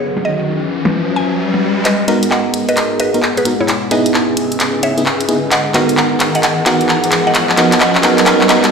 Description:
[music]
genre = UK garage, two-step garage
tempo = 131 BPM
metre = 4/4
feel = swing 64% on 16ths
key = G# minor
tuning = A4 = 438 Hz
[part]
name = mallet-like synth pluck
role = melody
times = 0.0-8.7 s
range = E4 to A#5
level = -19 LUFS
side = equal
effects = chorus, tape echo
[part]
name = warm analog pad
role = sustained chords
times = 0.0-8.7 s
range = F#3 to G#4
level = -25 LUFS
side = left 1 dB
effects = chorus
[part]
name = riser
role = sound effects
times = 0.0-8.7 s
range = none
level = -20 LUFS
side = left 1 dB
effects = none
[part]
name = warbly tape-like pad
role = texture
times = 0.0-8.7 s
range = B3 to E6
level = -21 LUFS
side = left 2 dB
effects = chorus, built-in reverb
[part]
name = garage drum kit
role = drums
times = 0.2-8.7 s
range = handclaps, hi-hat, snare drum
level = -16 LUFS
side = equal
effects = high-pass filter on hats, low-pass filter on hats, high-pass filter on snare, low-pass filter on snare
[part]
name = FM electric piano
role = stabs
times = 2.1-8.7 s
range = B3 to A#4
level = -16 LUFS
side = right 2 dB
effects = chorus
[sound]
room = wet plate reverb, RT60 1.6 s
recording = played on a big sound system in a bare room, stone room reverb, faint mains hum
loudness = -11 LUFS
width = side -5 dB against mid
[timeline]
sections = 0.0-1.9 A section; 1.9-8.7 B section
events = riser 0.0-1.9, 1.9-8.7; build-up 1.9-8.7; drum fill 1.9-8.7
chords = 0.0 C#m7; 1.9 G#m7; 3.7 C#m7; 5.5 G#m7

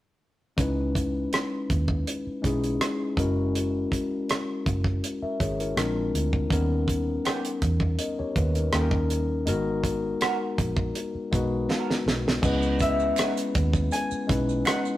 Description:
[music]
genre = R&B, neo-soul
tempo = 81 BPM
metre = 4/4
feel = swing 54% on 16ths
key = C# dorian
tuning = A4 = 439 Hz
[part]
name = tine electric piano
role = accompaniment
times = 0.6-15.0 s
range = E3 to E5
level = -27 LUFS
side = left 2 dB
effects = none
[part]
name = vintage muted fingered electric bass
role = bass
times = 0.6-14.6 s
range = F#1 to E2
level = -28 LUFS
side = right 1 dB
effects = none
[part]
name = damped 70s drum kit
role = drums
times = 0.6-14.8 s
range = crash cymbal, hi-hat, kick drum, rim click, snare drum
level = -27 LUFS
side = right 1 dB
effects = none
[part]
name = electric guitar through a small old amp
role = second line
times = 7.3-14.8 s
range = E3 to A#4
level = -34 LUFS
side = right 6 dB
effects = spring reverb
[part]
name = maracas and finger snaps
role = percussion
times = 12.4-15.0 s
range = none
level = -41 LUFS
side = right 6 dB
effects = none
[part]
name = concert harp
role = melody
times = 12.8-15.0 s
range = E5 to G#5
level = -28 LUFS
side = left 2 dB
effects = none
[sound]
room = light reverb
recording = rough rehearsal-room recording, warm saturation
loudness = -24 LUFS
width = side -15 dB against mid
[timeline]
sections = 0.6-12.4 A section; 12.4-15.0 B section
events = drum fill 11.7-12.4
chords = 0.6 C#m9; 3.2 F#9; 5.8 A#7; 6.5 D#7b13; 8.7 D#7; 9.5 G#m9; 12.4 C#m9

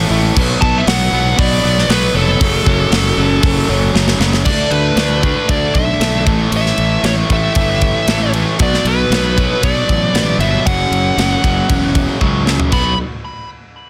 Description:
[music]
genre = hard rock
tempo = 116 BPM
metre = 4/4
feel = straight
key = B minor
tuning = A4 = 440 Hz
[part]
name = overdriven semi-hollow guitar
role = riff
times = 0.0-12.9 s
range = F#2 to D4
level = -20 LUFS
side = equal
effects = spring reverb
[part]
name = fuzz fingered electric bass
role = bass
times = 0.0-13.0 s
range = E1 to D2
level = -20 LUFS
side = equal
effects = overdrive
[part]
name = tight metal drum kit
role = drums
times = 0.4-12.8 s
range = crash cymbal, hi-hat, kick drum, ride cymbal, snare drum, toms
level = -20 LUFS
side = equal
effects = none
[part]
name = dark smooth lead guitar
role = melody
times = 0.6-13.0 s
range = A4 to B5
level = -20 LUFS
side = equal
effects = overdrive
[sound]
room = little or no reverb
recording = dense, heavily limited modern master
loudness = -14 LUFS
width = mono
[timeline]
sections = 0.0-4.5 A section; 4.5-12.7 B section; 12.7-13.9 C section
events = drum fill 3.9-4.5, 12.2-12.7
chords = 0.4 Bm; 2.4 F#m; 4.5 D5; 6.3 A5; 8.6 Bm; 10.7 F#5; 12.7 B5

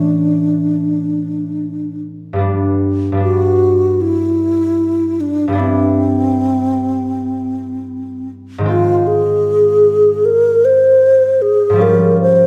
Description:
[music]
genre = classical, impressionist duo for alto flute and harp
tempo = 77 BPM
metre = 4/4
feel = rubato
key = Ab major from 8.7 s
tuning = A4 = 440 Hz
[part]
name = mellow hollow alto flute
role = melody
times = 0.0-12.5 s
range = C4 to C5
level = -15 LUFS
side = equal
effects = none
[part]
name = concert harp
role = accompaniment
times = 0.0-12.5 s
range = G2 to F#4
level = -21 LUFS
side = equal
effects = none
[sound]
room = moderate recital hall reverb, RT60 1.4 s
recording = none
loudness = -14 LUFS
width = mono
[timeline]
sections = 0.0-12.5 A section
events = none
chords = 0.0 Dmaj9/A; 2.5 Gmaj7; 5.6 Cmaj9/G; 8.7 Ab6; 11.8 Dbmaj7#11/Ab

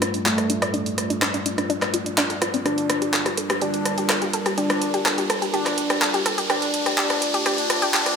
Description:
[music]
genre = melodic techno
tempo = 125 BPM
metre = 4/4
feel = straight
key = G minor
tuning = A4 = 440 Hz
[part]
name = dark analog pad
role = sustained chords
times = 0.0-8.2 s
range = G3 to D5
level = -30 LUFS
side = equal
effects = chorus
[part]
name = analog pluck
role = arpeggios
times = 0.0-8.1 s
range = C4 to D5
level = -26 LUFS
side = left 1 dB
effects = chorus, tape echo
[part]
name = analog drone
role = drone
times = 0.0-8.2 s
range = G2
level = -36 LUFS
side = equal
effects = chorus
[part]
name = house drum kit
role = drums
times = 0.0-8.2 s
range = handclaps, hi-hat, rim click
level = -23 LUFS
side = equal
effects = none
[part]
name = riser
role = sound effects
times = 0.0-8.2 s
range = none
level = -30 LUFS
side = right 1 dB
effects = none
[part]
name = wide unison lead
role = melody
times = 0.3-8.2 s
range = A3 to D4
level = -26 LUFS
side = equal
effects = digital delay
[sound]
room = moderate lush hall reverb, RT60 1.6 s, digital ambience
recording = high-pass filter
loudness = -20 LUFS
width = side -6 dB against mid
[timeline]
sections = 0.0-8.2 A section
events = build-up 0.0-8.2; riser 0.0-8.2; filter sweep on synth arpeggio sound 0.0-8.2; filter sweep on analog synth pad 0.0-8.2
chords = 0.0 Dm; 2.7 Gm7; 6.5 Dm

